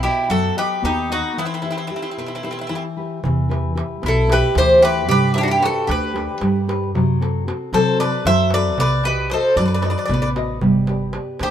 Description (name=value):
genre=greek folk, Greek bouzouki band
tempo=227 BPM (eighths)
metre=7/8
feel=straight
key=E harmonic minor, E minor from 3.2 s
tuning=A4 = 441 Hz
part: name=Greek bouzouki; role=melody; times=0.0-11.5 s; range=E4 to E5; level=-20 LUFS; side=equal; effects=none
part: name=mandolin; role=second line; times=0.0-11.5 s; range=B3 to C5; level=-23 LUFS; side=left 1 dB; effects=none
part: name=nylon-string guitar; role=accompaniment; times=0.0-11.5 s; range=B2 to D#5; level=-23 LUFS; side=left 2 dB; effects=none
part: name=upright bass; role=bass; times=0.0-11.5 s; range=G1 to C3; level=-23 LUFS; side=equal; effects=none
part: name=darbuka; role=percussion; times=3.2-11.5 s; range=none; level=-23 LUFS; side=right 2 dB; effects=none
room=light reverb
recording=minimal, uncompressed stereo recording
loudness=-16 LUFS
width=side -10 dB against mid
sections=0.0-3.2 A section; 3.2-11.5 B section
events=break 1.4-3.2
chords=0.0 B; 1.4 Em; 5.1 G; 6.9 F#dim; 8.8 B; 10.6 G